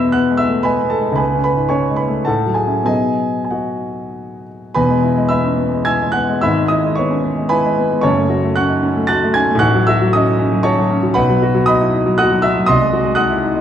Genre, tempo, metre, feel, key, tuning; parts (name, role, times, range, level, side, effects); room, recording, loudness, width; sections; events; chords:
classical, romantic character piece for solo piano; 91-123 BPM; 3/4; rubato; E major; A4 = 443 Hz
warm grand piano; solo; 0.0-13.6 s; E1 to A6; -13 LUFS; equal
wet recital hall reverb, RT60 1.3 s; dark, warm production; -13 LUFS; side -9 dB against mid
0.0-4.8 A section; 4.8-13.6 B section
0.0 E; 1.2 C#5; 2.3 F#m7/A; 2.9 B; 4.8 E; 6.5 E/G#; 8.0 F#m; 9.6 F#m/A; 11.2 B; 12.7 G#7/B#